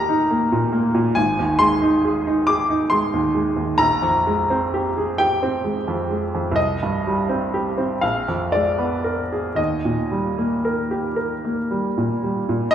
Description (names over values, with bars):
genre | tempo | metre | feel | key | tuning
classical, romantic nocturne for solo piano | 37-47 BPM (dotted quarters) | 6/8 | rubato | Eb major | A4 = 440 Hz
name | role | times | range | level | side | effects
clear baby grand piano | solo | 0.0-12.7 s | Ab1 to D6 | -18 LUFS | equal | none
room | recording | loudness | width
wet recital hall reverb, RT60 1.6 s | dark, warm production | -18 LUFS | side -9 dB against mid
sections
0.0-12.7 A section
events
none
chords
0.0 Eb; 1.2 Ab; 3.8 Bbsus2; 6.6 Cm; 8.0 Bb7b9; 9.6 Eb